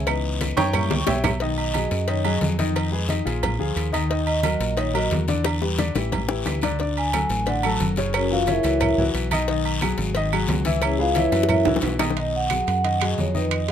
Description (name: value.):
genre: Afro-Cuban jazz.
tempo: 178 BPM.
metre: 4/4.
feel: straight.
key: B major.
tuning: A4 = 440 Hz.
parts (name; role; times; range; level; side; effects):
warm baby grand piano; accompaniment; 0.0-13.7 s; C#3 to C#6; -26 LUFS; left 3 dB; none.
fingered electric bass; bass; 0.0-13.7 s; F#1 to F#2; -25 LUFS; right 1 dB; none.
agogo bells and timbales; percussion; 0.1-13.7 s; none; -30 LUFS; right 8 dB; none.
claves; percussion; 0.1-1.4, 7.1-13.7 s; none; -30 LUFS; right 9 dB; none.
congas; percussion; 0.1-13.7 s; none; -30 LUFS; equal; none.
cowbell and bongos; percussion; 0.1-12.2 s; none; -29 LUFS; left 6 dB; none.
guiro; percussion; 0.1-13.7 s; none; -34 LUFS; left 5 dB; none.
vibraphone with soft mallets; melody; 1.6-13.7 s; C#4 to A5; -23 LUFS; right 1 dB; none.
room: little or no reverb.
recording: close, detailed microphones.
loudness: -20 LUFS.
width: side -9 dB against mid.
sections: 0.0-1.4 A section; 1.4-12.2 A section; 12.2-13.7 B section.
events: grand piano solo 0.0-1.4; drum fill 0.6-1.4, 5.5-6.8, 11.3-12.2; vibraphone solo 1.4-12.2.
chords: 0.1 C#m9; 0.7 F#7b9; 1.4 B6; 2.8 Fm7b5; 3.4 A#7; 4.1 D#m; 5.5 Em7; 6.1 A5; 6.8 D; 8.1 F#7; 9.5 B6; 10.2 G#5; 10.8 C#m7; 11.5 F#7(no3); 12.2 B6.